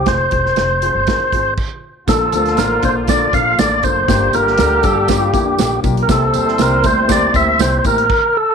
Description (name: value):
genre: uptempo 1960s-style soul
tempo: 120 BPM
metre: 4/4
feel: straight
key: C mixolydian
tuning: A4 = 441 Hz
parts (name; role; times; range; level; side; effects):
- tonewheel organ; melody; 0.0-8.5 s; G4 to F5; -15 LUFS; equal; overdrive, fast rotary speaker
- upright bass; bass; 0.0-8.1 s; E1 to G2; -21 LUFS; equal; tube saturation
- dark upright piano; accompaniment; 0.1-8.0 s; G2 to C5; -23 LUFS; left 12 dB; none
- natural country drum kit; drums; 0.1-8.2 s; crash cymbal, hi-hat, kick drum, snare drum; -20 LUFS; right 3 dB; none
- warm horn section; second line; 2.1-7.8 s; D3 to C5; -22 LUFS; right 1 dB; none
- mellow tonewheel organ; sustained chords; 2.1-8.1 s; Bb3 to D6; -27 LUFS; right 1 dB; chorus vibrato, stopped rotary speaker
- tambourine; percussion; 2.1-8.0 s; none; -31 LUFS; right 16 dB; none
- mellow electric guitar; riff; 4.8-6.1 s; D4 to A4; -25 LUFS; left 12 dB; none
room: moderate spring reverb, RT60 1.6 s, studio reverb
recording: 1960s-style stereo with parts hard left and right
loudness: -12 LUFS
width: side -6 dB against mid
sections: 0.0-2.1 A section; 2.1-8.5 B section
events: stop 1.6-2.1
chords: 0.1 Fm; 2.1 Bbmaj7; 4.1 Gm7; 6.1 C7